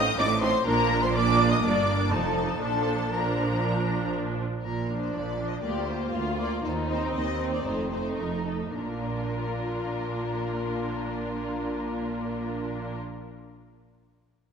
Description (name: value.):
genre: quick classical-period movement for string orchestra.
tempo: 103-126 BPM.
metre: 4/4.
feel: rubato.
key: Bb major.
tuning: A4 = 439 Hz.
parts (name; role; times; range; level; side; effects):
warm symphonic violin section; melody; 0.0-13.0 s; A4 to Eb6; -32 LUFS; left 2 dB; none.
warm symphonic violin section; second line; 0.0-13.0 s; C4 to Eb5; -32 LUFS; left 2 dB; none.
rich symphonic viola section; accompaniment; 0.0-13.0 s; F3 to F4; -30 LUFS; right 1 dB; none.
clear symphonic double bass section; bass; 0.0-13.0 s; F1 to Eb2; -33 LUFS; right 4 dB; none.
rich symphonic cello section; bass; 0.0-13.0 s; D2 to Bb2; -33 LUFS; right 3 dB; none.
room: moderate scoring stage reverb, RT60 2.0 s.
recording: minimal, uncompressed stereo recording.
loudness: -25 LUFS.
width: side -6 dB against mid.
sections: 0.0-4.6 A section; 4.6-8.8 B section; 8.8-13.3 C section.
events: slowing down 3.6-8.8.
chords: 0.0 F13/A (rootless); 0.7 Bb; 1.6 Gm; 2.1 F7; 2.6 Bb; 5.6 Bb/D; 6.6 Cm/Eb; 7.6 F7; 8.8 Bb.